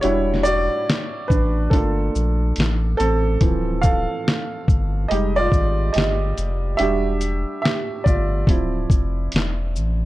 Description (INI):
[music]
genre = lo-fi hip hop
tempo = 71 BPM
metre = 4/4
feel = swing 66% on 16ths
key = D minor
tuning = A4 = 444 Hz
[part]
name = warm upright piano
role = accompaniment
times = 0.0-10.1 s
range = E3 to F5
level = -22 LUFS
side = right 2 dB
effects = none
[part]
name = soft dub sub bass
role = bass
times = 0.0-10.1 s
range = D1 to Bb1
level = -22 LUFS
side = equal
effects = none
[part]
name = lo-fi sampler-style drum kit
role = drums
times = 0.0-10.0 s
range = handclaps, hi-hat, kick drum, shaker, snare drum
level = -19 LUFS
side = equal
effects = none
[sound]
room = little or no reverb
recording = dark, warm production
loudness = -18 LUFS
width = side -16 dB against mid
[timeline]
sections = 0.0-10.1 A section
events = upright piano solo 0.0-10.1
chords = 0.0 Em9; 1.7 Gm9; 3.4 Dm9; 5.1 Fm9; 6.8 Em9; 8.5 Dm9